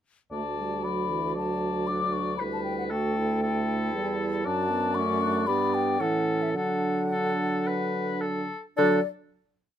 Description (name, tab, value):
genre	quick classical-period movement for wind quintet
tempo	106-118 BPM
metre	4/4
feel	rubato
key	D major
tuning	A4 = 440 Hz
part	mellow hollow concert flute	melody	0.3-9.1 s	D5 to D6	-30 LUFS	left 6 dB	none
part	warm oboe	second line	0.3-9.0 s	A4 to D5	-32 LUFS	left 3 dB	none
part	warm French horn	accompaniment	0.3-9.0 s	E3 to B3	-32 LUFS	right 2 dB	none
part	warm clarinet	accompaniment	0.3-9.0 s	B3 to F#4	-35 LUFS	right 8 dB	none
part	mellow bassoon	bass	0.3-9.0 s	D2 to D3	-29 LUFS	right 2 dB	none
room	light reverb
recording	close, detailed microphones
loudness	-25 LUFS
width	side -10 dB against mid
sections	0.3-8.8 A section; 8.8-9.8 final chord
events	none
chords	0.3 D; 4.5 D/F#; 5.5 G; 6.0 A; 6.5 D